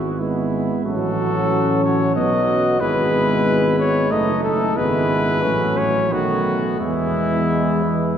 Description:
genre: classical, brass quintet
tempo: 91 BPM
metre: 3/4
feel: straight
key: E major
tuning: A4 = 439 Hz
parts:
  - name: warm cornet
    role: melody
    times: 0.0-8.2 s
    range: E4 to D#5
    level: -22 LUFS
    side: left 3 dB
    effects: none
  - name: mellow trumpet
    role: second line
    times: 0.0-8.2 s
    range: B3 to F#4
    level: -26 LUFS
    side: right 5 dB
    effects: none
  - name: mellow tuba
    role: bass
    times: 0.0-8.2 s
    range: F#1 to E2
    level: -24 LUFS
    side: right 2 dB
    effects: none
  - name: clear euphonium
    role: accompaniment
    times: 0.2-8.2 s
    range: D#3 to B3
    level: -23 LUFS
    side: right 2 dB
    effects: none
  - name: mellow French horn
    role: accompaniment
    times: 0.2-8.2 s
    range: G#3 to C#4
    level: -24 LUFS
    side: left 2 dB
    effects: none
room: wet cathedral reverb, RT60 4.2 s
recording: heard from further back in the room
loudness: -16 LUFS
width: side -8 dB against mid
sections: 0.0-8.2 A section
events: none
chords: 0.0 E/G#; 0.9 F#m/A; 2.2 B; 2.8 E/G#; 4.1 D#dim/F#; 4.8 E/G#; 5.4 F#m/A; 6.1 B7; 6.8 E

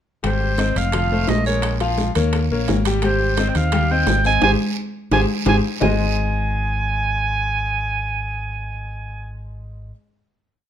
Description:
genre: latin, salsa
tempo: 172 BPM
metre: 4/4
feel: straight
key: Ab major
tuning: A4 = 440 Hz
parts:
  - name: bright concert grand piano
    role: accompaniment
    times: 0.2-9.9 s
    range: F3 to G5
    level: -24 LUFS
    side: left 4 dB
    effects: none
  - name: fingered electric bass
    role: bass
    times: 0.2-9.9 s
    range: F1 to Eb2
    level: -22 LUFS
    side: equal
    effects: none
  - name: bongos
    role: percussion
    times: 0.2-5.9 s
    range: none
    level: -28 LUFS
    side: left 7 dB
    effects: none
  - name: congas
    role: percussion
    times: 0.2-5.9 s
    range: none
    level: -27 LUFS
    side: equal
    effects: none
  - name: guiro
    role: percussion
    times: 0.2-5.9 s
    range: none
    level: -34 LUFS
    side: right 9 dB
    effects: none
  - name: timbales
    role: percussion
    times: 0.2-5.9 s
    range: none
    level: -28 LUFS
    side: right 7 dB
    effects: none
  - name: bright clarinet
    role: melody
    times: 0.3-9.4 s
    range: C5 to Ab5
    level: -22 LUFS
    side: right 3 dB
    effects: none
room: light reverb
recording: minimal, uncompressed stereo recording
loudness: -17 LUFS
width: side -10 dB against mid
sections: 0.2-5.8 A section; 5.8-8.6 final chord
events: band accent 4.4-5.8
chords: 0.2 Abmaj7; 0.9 F; 1.6 Bbm7; 2.3 Eb7; 3.0 Abmaj7; 5.8 Ab

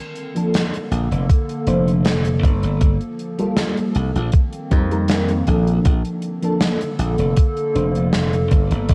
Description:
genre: vaporwave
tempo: 79 BPM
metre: 4/4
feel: straight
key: Bb major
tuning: A4 = 440 Hz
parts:
  - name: warbly tape-like pad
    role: sustained chords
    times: 0.0-8.9 s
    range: D3 to A4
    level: -28 LUFS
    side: equal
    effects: chorus, built-in reverb, phaser
  - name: gated 80s drum kit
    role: drums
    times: 0.2-8.9 s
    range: hi-hat, snare drum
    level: -26 LUFS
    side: equal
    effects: gated reverb
  - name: mellow FM electric piano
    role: accompaniment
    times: 0.3-8.1 s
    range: F3 to C5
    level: -25 LUFS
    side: equal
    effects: ensemble chorus, analog delay
  - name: slap bass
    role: bass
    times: 0.9-8.9 s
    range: F1 to F2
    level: -22 LUFS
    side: equal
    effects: none
  - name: electronic kick drum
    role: drums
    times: 1.3-8.9 s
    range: none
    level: -18 LUFS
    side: equal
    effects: none
room: light reverb, small room ambience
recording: cassette tape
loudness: -19 LUFS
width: mono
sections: 0.0-8.9 A section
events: none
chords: 0.0 Bbmaj7; 2.4 Gm9; 4.0 Cm7; 5.8 Bbmaj7

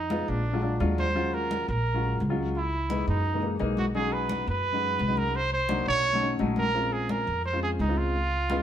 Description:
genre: Afro-Cuban jazz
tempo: 172 BPM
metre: 4/4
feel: straight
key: Bb minor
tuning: A4 = 440 Hz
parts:
  - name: warm trumpet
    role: melody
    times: 0.0-8.6 s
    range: D4 to Db5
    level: -28 LUFS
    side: right 3 dB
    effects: none
  - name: upright bass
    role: bass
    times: 0.0-8.6 s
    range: Bb1 to Gb2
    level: -30 LUFS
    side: equal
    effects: none
  - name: warm baby grand piano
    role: accompaniment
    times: 0.1-8.6 s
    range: Fb3 to F4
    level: -31 LUFS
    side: left 3 dB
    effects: none
  - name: congas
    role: percussion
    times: 0.1-8.6 s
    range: none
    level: -34 LUFS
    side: left 2 dB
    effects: none
room: moderate stone room reverb, RT60 1.1 s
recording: band playing live in one room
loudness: -24 LUFS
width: side -10 dB against mid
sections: 0.0-8.6 A section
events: none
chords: 0.5 Bb7b13; 1.2 Ebm11; 2.6 Dbm7; 3.3 Gb13; 4.0 B6; 5.3 Cm7b5; 6.0 B9; 6.7 Bbm9

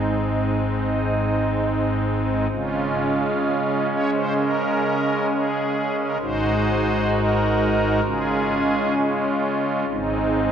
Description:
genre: classical, chorale-style piece for pipe organ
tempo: 65 BPM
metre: 4/4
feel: straight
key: Db major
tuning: A4 = 440 Hz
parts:
  - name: pipe organ, strings celeste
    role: solo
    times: 0.0-10.5 s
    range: Ab1 to Db5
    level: -19 LUFS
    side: equal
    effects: none
room: wet church reverb, RT60 3.4 s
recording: heard from further back in the room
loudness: -19 LUFS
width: side -8 dB against mid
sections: 0.0-2.5 A section; 2.5-10.5 B section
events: none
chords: 0.0 Ab; 2.5 Db; 6.2 Ab7; 8.0 Db; 9.9 Ab

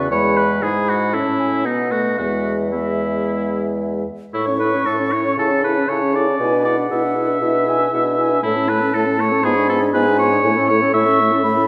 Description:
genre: quick classical-period movement for wind quintet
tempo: 109-121 BPM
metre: 4/4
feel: rubato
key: E major, A major from 4.3 s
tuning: A4 = 439 Hz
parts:
  - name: concert flute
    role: melody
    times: 0.0-11.7 s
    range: E5 to C#6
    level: -28 LUFS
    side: equal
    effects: none
  - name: mellow French horn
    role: accompaniment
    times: 0.0-11.7 s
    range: C#3 to E4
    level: -25 LUFS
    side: equal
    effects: none
  - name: mellow clarinet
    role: accompaniment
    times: 0.0-11.7 s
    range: B3 to C#5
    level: -30 LUFS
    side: equal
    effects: none
  - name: mellow bassoon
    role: bass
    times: 0.0-11.7 s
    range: E2 to C#3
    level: -23 LUFS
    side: equal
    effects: none
  - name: warm oboe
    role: second line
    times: 0.1-11.6 s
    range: D#4 to E5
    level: -23 LUFS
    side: equal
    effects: none
room: wet concert hall reverb, RT60 1.9 s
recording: none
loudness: -18 LUFS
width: mono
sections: 0.0-4.3 A section; 4.3-11.7 B section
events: none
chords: 0.1 E; 1.1 A; 1.7 B; 2.2 E; 4.3 A; 5.4 A/C#; 6.4 E7/B; 8.4 A; 9.4 G#dim7; 10.4 A

